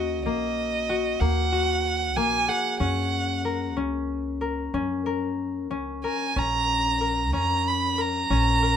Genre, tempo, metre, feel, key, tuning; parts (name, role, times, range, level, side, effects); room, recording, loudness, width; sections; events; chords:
contemporary instrumental, chamber music in an uneven meter; 187 BPM (eighths); 11/8; straight; A4 = 440 Hz
dark violin; melody; 0.0-8.8 s; Eb5 to Cb6; -25 LUFS; right 3 dB
concert harp; arpeggios; 0.0-8.8 s; Bb3 to Bb4; -27 LUFS; left 5 dB
upright bass; bass; 0.0-8.8 s; Bb1 to Gb2; -29 LUFS; equal
light reverb; minimal, uncompressed stereo recording; -23 LUFS; side -8 dB against mid
0.0-8.8 A section
0.0 Ebm; 2.8 Gb; 6.4 Bbm